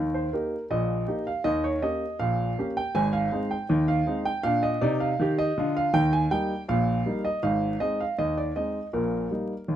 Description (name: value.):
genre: ragtime piano.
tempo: 80 BPM.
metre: 2/4.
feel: straight.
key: Eb major.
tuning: A4 = 438 Hz.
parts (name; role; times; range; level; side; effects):
warm grand piano; solo; 0.0-9.8 s; Ab1 to Ab5; -24 LUFS; right 1 dB; none.
room: light reverb.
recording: close, detailed microphones, vinyl crackle.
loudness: -24 LUFS.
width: side -11 dB against mid.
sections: 0.0-9.8 A section.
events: none.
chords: 0.0 Eb; 1.5 Eb7; 3.0 Ab; 4.4 Bb; 5.9 Eb; 7.4 Ab; 8.9 Eb/Bb.